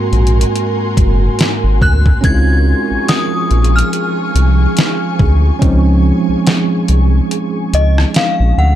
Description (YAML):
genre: contemporary R&B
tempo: 71 BPM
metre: 4/4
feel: swing 58% on 16ths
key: Db major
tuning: A4 = 440 Hz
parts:
  - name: bell-like tine electric piano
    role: accompaniment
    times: 0.0-8.8 s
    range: Ab2 to Gb4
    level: -18 LUFS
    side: right 2 dB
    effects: medium stereo tremolo
  - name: ethereal airy pad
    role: sustained chords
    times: 0.0-8.8 s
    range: F3 to Db6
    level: -20 LUFS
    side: right 2 dB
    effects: ensemble chorus, built-in reverb
  - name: round analog bass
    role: bass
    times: 0.1-8.8 s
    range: Gb1 to D2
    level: -11 LUFS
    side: equal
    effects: none
  - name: detuned 8-bit digital drum machine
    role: drums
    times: 0.1-8.4 s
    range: hi-hat, kick drum, rim click, snare drum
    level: -14 LUFS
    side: equal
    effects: none
  - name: synth chime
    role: melody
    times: 1.8-8.8 s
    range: Eb5 to Ab6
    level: -19 LUFS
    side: left 2 dB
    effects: ensemble chorus, tremolo, ping-pong delay
room: digital ambience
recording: dark, warm production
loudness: -10 LUFS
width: side -12 dB against mid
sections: 0.0-8.8 A section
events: kick muted 7.3-8.8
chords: 0.0 Ab9; 2.2 Dbmaj7